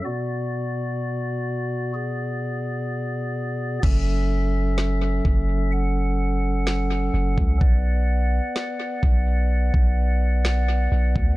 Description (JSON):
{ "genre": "hip hop, atmospheric cloud-rap", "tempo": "127 BPM", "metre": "4/4", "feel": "half-time", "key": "F# minor", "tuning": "A4 = 440 Hz", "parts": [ { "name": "chamber organ, stopped flute", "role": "sustained chords", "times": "0.1-11.4 s", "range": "B2 to F#5", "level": "-26 LUFS", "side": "equal", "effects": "sidechain pumping, low-pass filter" }, { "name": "long sustained 808-style bass", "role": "bass", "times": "3.8-11.4 s", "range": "F#1 to D2", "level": "-21 LUFS", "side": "equal", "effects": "none" }, { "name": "smooth R&B drum kit", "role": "drums", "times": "3.8-11.3 s", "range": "crash cymbal, kick drum, snare drum", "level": "-22 LUFS", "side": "equal", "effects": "tape echo" } ], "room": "little or no reverb", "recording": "echo-heavy mix", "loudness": "-20 LUFS", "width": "side -18 dB against mid", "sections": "0.0-3.8 A section; 3.8-11.4 B section", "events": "hi-hats muted 3.8-11.4", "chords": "0.1 Bm; 3.8 F#m7; 7.6 Bm" }